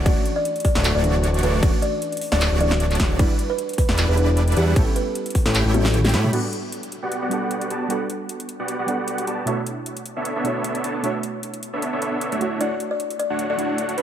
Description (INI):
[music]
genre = future bass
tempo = 153 BPM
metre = 4/4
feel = swing 54% on 16ths, half-time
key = D major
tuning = A4 = 440 Hz
[part]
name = soft round pluck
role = accompaniment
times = 0.0-14.0 s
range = B2 to F#5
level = -28 LUFS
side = right 2 dB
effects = analog chorus, sidechain pumping, tape echo
[part]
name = supersaw chords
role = riff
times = 0.0-14.0 s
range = G3 to B5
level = -26 LUFS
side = right 1 dB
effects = sidechain pumping, low-pass filter, tape echo
[part]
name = fat analog bass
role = bass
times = 0.0-6.3 s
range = D1 to A2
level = -20 LUFS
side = equal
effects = sidechain pumping
[part]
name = buzzing kalimba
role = melody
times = 0.1-6.3, 12.6-14.0 s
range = F#4 to D5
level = -26 LUFS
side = left 2 dB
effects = sidechain pumping, tape echo
[part]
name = dubstep drum kit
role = drums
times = 0.1-14.0 s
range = crash cymbal, handclaps, hi-hat, snare drum, toms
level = -27 LUFS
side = equal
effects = none
[part]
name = electronic kick drum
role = drums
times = 0.1-5.4 s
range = none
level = -20 LUFS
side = equal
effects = overdrive
[sound]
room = digital ambience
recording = none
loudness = -19 LUFS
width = side -10 dB against mid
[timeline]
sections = 0.0-6.3 A section; 6.3-14.0 B section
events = drop 0.0-6.3; drum fill 5.7-6.3; kick drops out 5.9-6.3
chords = 0.0 Dmaj7; 3.2 Em7; 4.8 A7; 6.3 Gmaj7; 9.5 Bm11; 12.4 Dmaj7